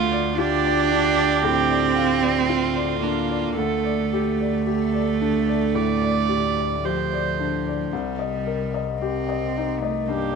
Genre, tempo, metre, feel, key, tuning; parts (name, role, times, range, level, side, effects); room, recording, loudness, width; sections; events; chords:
neoclassical piano and strings; 55 BPM; 4/4; rubato; A4 = 440 Hz
warm cello; second line; 0.0-10.4 s; F3 to D4; -23 LUFS; right 8 dB
warm upright piano; accompaniment; 0.0-10.4 s; C2 to F5; -26 LUFS; left 13 dB
warm viola; accompaniment; 0.0-10.4 s; F4 to D5; -25 LUFS; right 9 dB
warm double bass; bass; 0.0-10.4 s; C2 to D2; -30 LUFS; left 2 dB
light reverb, small room ambience; 1960s-style stereo with parts hard left and right; -20 LUFS; side -5 dB against mid
0.0-10.4 A section
0.0 Dm; 3.6 Gsus2/D; 7.9 Cm7